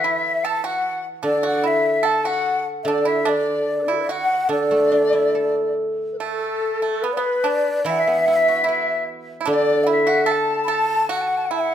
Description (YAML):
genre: chinese traditional, Chinese chamber ensemble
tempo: 73 BPM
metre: 2/4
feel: rubato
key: D gong mode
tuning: A4 = 438 Hz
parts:
  - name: breathy mellow xiao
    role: melody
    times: 0.0-11.7 s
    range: A4 to B5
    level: -22 LUFS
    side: equal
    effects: none
  - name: large dizi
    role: second line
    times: 0.0-11.7 s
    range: D4 to A5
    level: -24 LUFS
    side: left 5 dB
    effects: none
  - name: pipa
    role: second line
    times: 0.0-11.7 s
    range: A3 to A4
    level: -26 LUFS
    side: right 8 dB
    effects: none
  - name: guzheng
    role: accompaniment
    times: 0.0-11.7 s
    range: D3 to B4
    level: -22 LUFS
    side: right 1 dB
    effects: none
room: moderate recital hall reverb, RT60 1.6 s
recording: none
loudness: -18 LUFS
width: side -10 dB against mid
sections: 0.0-6.2 A section; 6.2-11.7 B section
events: none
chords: none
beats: 0.44 | 1.25 2.06 | 2.87 3.67 | 4.50 5.35 | 6.20 7.04 | 7.86 8.67 | 9.48 10.30 | 11.12